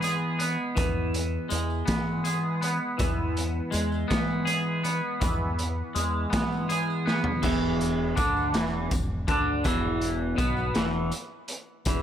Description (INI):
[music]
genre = psychedelic rock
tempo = 54 BPM (dotted quarters)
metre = 6/8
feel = straight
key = E major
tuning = A4 = 438 Hz
[part]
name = twangy electric guitar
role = riff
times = 0.0-12.0 s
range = E2 to G#4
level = -27 LUFS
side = equal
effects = phaser, double-tracked left and right
[part]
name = growling fingered electric bass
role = bass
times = 0.0-12.0 s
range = E1 to E3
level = -30 LUFS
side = equal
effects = overdrive
[part]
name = raw garage drum kit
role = drums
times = 0.0-12.0 s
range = crash cymbal, hi-hat, kick drum, snare drum, toms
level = -29 LUFS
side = equal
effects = none
[part]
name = tambourine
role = percussion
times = 0.0-12.0 s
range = none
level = -44 LUFS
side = left 8 dB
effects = none
[sound]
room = small room ambience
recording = none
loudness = -24 LUFS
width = side -9 dB against mid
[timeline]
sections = 0.0-7.4 A section; 7.4-12.0 B section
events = drum fill 7.1-7.4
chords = 0.0 E; 7.4 E5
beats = | 0.77 1.88 | 2.99 4.10 | 5.21 6.32 | 7.42 8.53 | 9.64 10.75 | 11.86